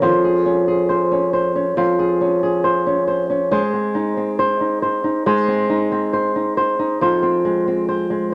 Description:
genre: pop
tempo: 69 BPM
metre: 4/4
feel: straight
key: unclear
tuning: A4 = 442 Hz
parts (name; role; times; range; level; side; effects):
- flamenco guitar; solo; 0.0-8.3 s; F2 to C5; -18 LUFS; equal; none
room: wet studio reverb, RT60 0.6 s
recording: none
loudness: -18 LUFS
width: mono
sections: 0.0-8.3 A section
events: none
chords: 0.0 Dbmaj7/F; 3.5 Ab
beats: | 0.04 0.91 1.78 2.66 | 3.53 4.41 5.28 6.15 | 7.02 7.89

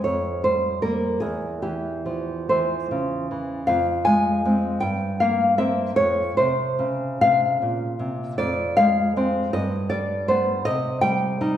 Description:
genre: romantic piece for solo classical guitar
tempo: 44-54 BPM (dotted quarters)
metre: 6/8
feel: rubato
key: F minor, C minor from 8.4 s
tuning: A4 = 439 Hz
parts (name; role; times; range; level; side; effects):
- nylon-string guitar; solo; 0.0-11.6 s; E2 to Ab5; -20 LUFS; equal; none
room: wet recital hall reverb, RT60 1.4 s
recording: recorded in a church or concert hall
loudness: -20 LUFS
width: side -10 dB against mid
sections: 0.0-11.6 A section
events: none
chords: 0.0 Bbm69/F; 1.2 C/E; 3.7 Fm; 4.8 C5/G; 5.9 F5; 8.4 Fm6; 9.5 G; 10.7 Cm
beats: 0.03 | 1.21 2.51 | 3.68 4.82 | 5.95 7.20 | 8.37 9.52 | 10.67

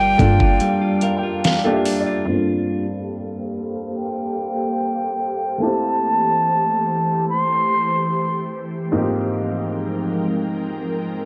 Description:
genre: contemporary R&B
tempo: 72 BPM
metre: 4/4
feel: straight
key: G dorian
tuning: A4 = 440 Hz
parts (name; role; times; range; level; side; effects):
- breathy concert flute; melody; 0.0-8.5 s; G5 to C6; -22 LUFS; equal; low-pass filter, cassette tape, tape echo
- warm baby grand piano; accompaniment; 0.0-11.3 s; G2 to G5; -26 LUFS; equal; low-pass filter, cassette tape
- ethereal airy pad; sustained chords; 0.0-11.3 s; E3 to G5; -28 LUFS; equal; ensemble chorus, built-in reverb, sidechain pumping, low-pass filter, cassette tape
- clean electric guitar; arpeggios; 0.0-2.9 s; G3 to Bb4; -25 LUFS; equal; cassette tape, tape echo
- soft 808-style bass; bass; 0.0-0.6 s; G1 to G2; -20 LUFS; equal; none
- smooth R&B drum kit; drums; 0.2-2.1 s; hi-hat, kick drum, snare drum; -22 LUFS; equal; cassette tape
room: little or no reverb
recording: home recording on cassette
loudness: -21 LUFS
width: mono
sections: 0.0-2.3 A section; 2.3-11.3 B section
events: break 0.6-2.3; grand piano fill 0.6-2.3; filter sweep 2.3-11.3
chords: 0.0 Gm7; 2.3 Gm11; 5.6 Am7; 8.9 Abmaj13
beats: 0.61 1.44 | 2.28 3.11 3.94 4.78 | 5.61 6.44 7.28 8.11 | 8.94 9.78 10.61

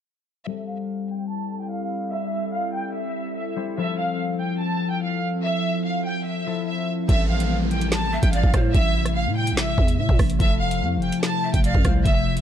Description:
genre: hip hop, drill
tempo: 145 BPM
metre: 4/4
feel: half-time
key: A minor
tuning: A4 = 442 Hz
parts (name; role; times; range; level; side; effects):
- warm studio violin section; melody; 0.5-12.4 s; E5 to A5; -28 LUFS; equal; low-pass filter
- concert harp; accompaniment; 0.5-12.4 s; F3 to A4; -29 LUFS; left 6 dB; low-pass filter
- glassy FM pad; sustained chords; 1.2-12.4 s; C3 to A4; -29 LUFS; equal; ensemble chorus, built-in reverb, low-pass filter
- growling 808-style bass; bass; 7.1-12.4 s; F1 to A2; -24 LUFS; right 1 dB; none
- drill drum kit; drums; 7.1-12.4 s; hi-hat, kick drum, rim click, snare drum; -20 LUFS; equal; none
- downlifter; sound effects; 7.1-10.4 s; none; -34 LUFS; left 2 dB; none
- breathy mellow large pan pipes; second line; 8.1-8.7, 11.4-12.0 s; C5 to E5; -33 LUFS; right 2 dB; digital delay
room: studio reverb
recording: dark, warm production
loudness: -20 LUFS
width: side -10 dB against mid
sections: 0.5-7.1 A section; 7.1-12.4 B section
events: filter sweep 0.5-7.1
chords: 0.5 Am7; 3.8 Fmaj7; 7.1 Am7; 10.4 Fmaj7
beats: | 0.47 0.88 1.30 1.71 | 2.12 2.54 2.95 3.37 | 3.78 4.19 4.61 5.02 | 5.43 5.85 6.26 6.68 | 7.09 7.50 7.92 8.33 | 8.74 9.16 9.57 9.99 | 10.40 10.81 11.23 11.64 | 12.05

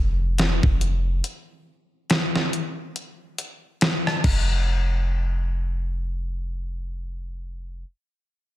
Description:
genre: contemporary R&B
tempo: 70 BPM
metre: 4/4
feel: swing 58% on 16ths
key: unclear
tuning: A4 = 442 Hz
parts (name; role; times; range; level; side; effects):
- clean 808-style bass; bass; 0.0-7.8 s; F1; -24 LUFS; equal; none
- detuned 8-bit digital drum machine; drums; 0.4-4.5 s; crash cymbal, hi-hat, kick drum, rim click, snare drum; -23 LUFS; equal; none
room: little or no reverb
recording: dense, heavily limited modern master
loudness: -22 LUFS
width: side -14 dB against mid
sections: 0.0-4.7 A section; 4.7-8.1 B section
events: break 1.2-4.7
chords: none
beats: 0.38 | 1.24 2.10 2.96 3.81 | 4.67 5.53 6.38 7.24

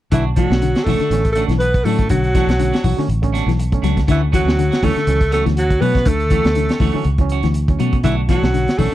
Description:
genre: afrobeat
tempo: 121 BPM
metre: 4/4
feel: swing 55% on 16ths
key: B minor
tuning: A4 = 441 Hz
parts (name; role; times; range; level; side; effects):
- breathy alto saxophone; melody; 0.1-8.9 s; E4 to B4; -20 LUFS; equal; none
- clear tenor saxophone; second line; 0.1-8.9 s; E3 to B3; -28 LUFS; right 4 dB; none
- mellow electric guitar; arpeggios; 0.1-8.9 s; D3 to F#3; -22 LUFS; left 9 dB; none
- semi-hollow electric guitar; stabs; 0.1-8.9 s; A3 to F#4; -27 LUFS; right 8 dB; spring reverb
- fingered electric bass; bass; 0.1-8.9 s; A1 to B2; -18 LUFS; equal; none
- crunchy breakbeat drum kit; drums; 0.1-8.9 s; hi-hat, kick drum, snare drum; -20 LUFS; equal; none
- overdriven reed electric piano; accompaniment; 0.5-8.9 s; D3 to C#4; -26 LUFS; right 9 dB; none
room: little or no reverb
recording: dry, close 1970s-style studio recording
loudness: -14 LUFS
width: side -14 dB against mid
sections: 0.1-8.9 A section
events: none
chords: 0.1 Bm7; 4.1 Dmaj7; 8.0 Bm7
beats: | 0.12 0.61 1.11 1.60 | 2.10 2.59 3.09 3.58 | 4.08 4.58 5.07 5.57 | 6.06 6.56 7.05 7.55 | 8.04 8.54

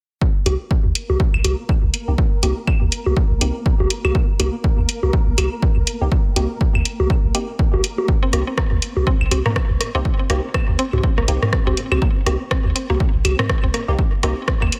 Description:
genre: minimal techno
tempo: 122 BPM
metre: 4/4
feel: swing 58% on 16ths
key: C minor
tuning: A4 = 440 Hz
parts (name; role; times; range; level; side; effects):
- electronic kick drum; drums; 0.2-14.6 s; none; -21 LUFS; equal; none
- flickering grainy texture; texture; 1.0-14.8 s; Bb3 to Bb4; -36 LUFS; equal; built-in reverb, sidechain pumping
- wavetable chord stab; stabs; 0.5-14.4 s; Bb3 to G4; -31 LUFS; equal; digital delay
- punchy sub bass; bass; 0.5-14.7 s; Bb1 to D2; -22 LUFS; equal; sidechain pumping
- punchy analog drum machine; drums; 0.5-14.8 s; hi-hat, rim click; -26 LUFS; equal; none
- booming analog drum machine; percussion; 0.5-14.7 s; bongos, claves, rim click, toms; -25 LUFS; equal; digital delay
- mallet-like synth pluck; riff; 8.2-14.7 s; Bb3 to C4; -30 LUFS; equal; chorus, sidechain pumping, delay
room: little or no reverb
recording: none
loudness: -19 LUFS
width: mono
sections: 0.2-14.8 A section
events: filter sweep on synth stab 0.2-14.8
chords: 0.2 C7(no3)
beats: | 0.21 0.71 1.20 1.69 | 2.18 2.67 3.17 3.66 | 4.15 4.64 5.13 5.62 | 6.12 6.61 7.10 7.59 | 8.08 8.58 9.07 9.56 | 10.05 10.54 11.04 11.53 | 12.02 12.51 13.00 13.49 | 13.99 14.48

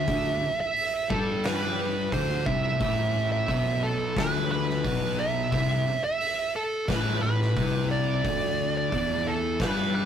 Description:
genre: stoner and doom metal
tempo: 88 BPM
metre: 4/4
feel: straight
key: unclear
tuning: A4 = 438 Hz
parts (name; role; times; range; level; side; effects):
- fuzz lead guitar; melody; 0.0-10.1 s; A4 to E5; -28 LUFS; right 3 dB; wah, distortion
- thick fuzz guitar; riff; 0.0-10.1 s; A2 to G3; -32 LUFS; left 9 dB; distortion
- thick fuzz guitar; riff; 0.0-10.1 s; A2 to G3; -31 LUFS; right 2 dB; distortion
- fuzz fingered electric bass; bass; 0.0-10.1 s; A1 to G2; -32 LUFS; left 1 dB; overdrive
- oversized low-tuned drum kit; drums; 0.1-9.8 s; hi-hat, kick drum, snare drum; -32 LUFS; left 1 dB; none
room: moderate studio reverb, RT60 0.5 s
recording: rough rehearsal-room recording, tube saturation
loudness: -24 LUFS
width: side -8 dB against mid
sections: 0.0-10.1 A section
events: none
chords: 0.0 C5; 2.8 A5; 8.2 D5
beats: | 0.08 0.76 1.44 2.12 | 2.81 3.48 4.17 4.84 | 5.52 6.20 6.88 7.56 | 8.24 8.92 9.60

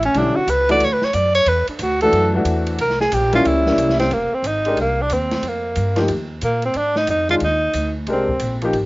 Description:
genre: modal jazz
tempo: 182 BPM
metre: 4/4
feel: swing 64% on 8ths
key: F dorian from 4.1 s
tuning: A4 = 440 Hz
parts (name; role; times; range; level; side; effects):
- breathy tenor saxophone; melody; 0.0-8.6 s; Bb3 to D5; -18 LUFS; right 1 dB; cassette tape, plate reverb
- upright bass; bass; 0.0-8.9 s; F1 to Bb2; -23 LUFS; equal; none
- open jazz drum kit; drums; 0.0-8.8 s; hi-hat, kick drum, ride cymbal, snare drum; -30 LUFS; equal; cassette tape
- warm upright piano; accompaniment; 0.2-8.7 s; D3 to Bb4; -20 LUFS; left 2 dB; cassette tape, plate reverb
room: moderate booth ambience, RT60 0.2 s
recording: home recording on cassette, nothing above 7.6 kHz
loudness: -16 LUFS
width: side -21 dB against mid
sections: 0.0-4.1 A section; 4.1-8.9 B section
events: tenor saxophone solo 0.0-4.1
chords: 0.0 E7sus2; 2.8 C7b9; 4.1 Fm11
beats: | 0.15 0.48 0.81 1.14 | 1.47 1.80 2.13 2.46 | 2.79 3.12 3.45 3.78 | 4.11 4.44 4.77 5.10 | 5.43 5.76 6.09 6.42 | 6.75 7.08 7.41 7.74 | 8.07 8.40 8.73

